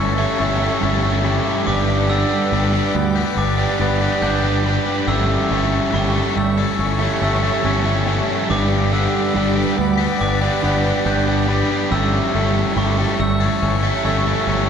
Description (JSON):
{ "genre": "rock", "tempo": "70 BPM", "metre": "4/4", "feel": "straight", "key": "G lydian", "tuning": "A4 = 441 Hz", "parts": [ { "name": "warm studio string section", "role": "sustained chords", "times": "0.0-14.7 s", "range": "A4 to D6", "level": "-30 LUFS", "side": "left 1 dB", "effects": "none" }, { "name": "glockenspiel with brass mallets", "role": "arpeggios", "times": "0.0-14.7 s", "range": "C#6 to G6", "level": "-28 LUFS", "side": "equal", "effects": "none" }, { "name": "twangy electric guitar", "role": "arpeggios", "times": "0.0-14.7 s", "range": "G2 to D4", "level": "-27 LUFS", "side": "left 2 dB", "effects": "none" }, { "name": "cranked stack guitar", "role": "riff", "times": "0.0-14.7 s", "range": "G3 to A4", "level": "-22 LUFS", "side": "left 6 dB", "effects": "overdrive" }, { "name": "growling fingered electric bass", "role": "bass", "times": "0.0-14.7 s", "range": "G1 to D2", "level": "-21 LUFS", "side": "equal", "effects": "overdrive" }, { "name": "crunchy overdriven guitar", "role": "riff", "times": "0.2-14.7 s", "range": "G3 to E5", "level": "-21 LUFS", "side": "right 4 dB", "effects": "none" } ], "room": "wet concert hall reverb, RT60 2.3 s", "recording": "recorded in a church or concert hall", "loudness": "-16 LUFS", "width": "side -7 dB against mid", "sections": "0.0-14.7 A section", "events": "none", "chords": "0.0 A/G; 1.7 G; 5.1 A/G; 8.5 G; 11.9 A/G" }